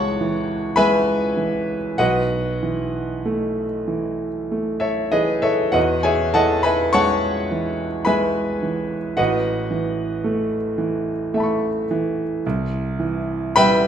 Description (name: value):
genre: classical, impressionist solo piano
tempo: 47-57 BPM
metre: 3/4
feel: rubato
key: E major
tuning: A4 = 439 Hz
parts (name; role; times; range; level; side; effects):
- clear concert grand piano; solo; 0.0-13.9 s; A1 to C#6; -18 LUFS; equal; none
room: wet recital hall reverb, RT60 1.5 s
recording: none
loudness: -19 LUFS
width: side -8 dB against mid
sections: 0.0-13.9 A section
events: none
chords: 0.0 C#m; 2.0 B9sus4; 5.8 Emaj7; 9.2 A69; 12.4 Cmaj7